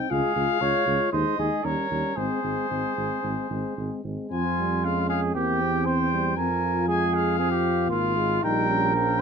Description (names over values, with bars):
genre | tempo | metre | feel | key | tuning
classical, brass quintet | 116 BPM | 4/4 | rubato | Ab major, F minor from 4.3 s | A4 = 440 Hz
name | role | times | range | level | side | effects
clear trumpet | melody | 0.0-9.2 s | C5 to Ab5 | -29 LUFS | left 11 dB | none
dark French horn | accompaniment | 0.0-9.2 s | C4 to F4 | -30 LUFS | left 8 dB | none
mellow euphonium | accompaniment | 0.0-9.2 s | F3 to C4 | -32 LUFS | right 2 dB | none
warm flugelhorn | second line | 0.1-9.2 s | F4 to Db5 | -27 LUFS | right 7 dB | none
dark tuba | bass | 0.1-9.2 s | Ab1 to F2 | -29 LUFS | right 4 dB | none
room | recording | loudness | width
light reverb | close, detailed microphones | -22 LUFS | side -6 dB against mid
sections
0.0-4.3 A section; 4.3-9.2 B section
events
none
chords
0.1 Db; 1.1 Ab/Eb; 1.6 Eb7; 2.2 Ab; 4.3 Fm; 5.4 C7/E; 6.4 Fm; 8.4 Bbm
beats
| 0.11 0.61 1.13 1.65 | 2.17 2.70 3.24 3.77 | 4.32 4.84 5.35 5.86 | 6.37 6.89 7.39 7.91 | 8.44 8.96